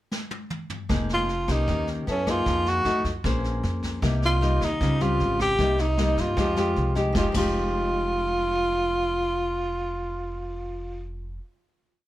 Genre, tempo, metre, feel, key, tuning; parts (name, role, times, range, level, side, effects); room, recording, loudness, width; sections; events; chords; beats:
bossa nova; 154 BPM; 4/4; straight; F minor; A4 = 440 Hz
jazz brush drum kit; drums; 0.1-7.5 s; crash cymbal, kick drum, rim click, snare drum, toms; -31 LUFS; equal
nylon-string guitar; accompaniment; 0.9-11.4 s; C3 to C5; -28 LUFS; left 2 dB
upright bass; bass; 0.9-11.4 s; F1 to G2; -28 LUFS; equal
breathy tenor saxophone; melody; 1.1-11.0 s; Db4 to G4; -25 LUFS; equal; plate reverb
light reverb; -22 LUFS; side -14 dB against mid
0.0-0.9 pickup bar; 0.9-7.2 A section; 7.2-10.3 final chord
drum fill 0.1-0.9
0.0 N.C.; 0.9 Fm11; 1.7 Eb7; 2.1 Gbm11; 2.5 Fm7; 2.9 F7b9; 3.2 Bbm9; 4.0 Cm7; 4.8 Dbmaj7#11; 5.6 Cm7; 6.4 Fm9
0.12 0.51 | 0.90 1.29 1.68 2.07 | 2.46 2.85 3.25 3.64 | 4.03 4.42 4.81 5.20 | 5.59 5.98 6.37 6.76 | 7.16 7.54 7.94 8.33 | 8.72 9.11 9.50 9.89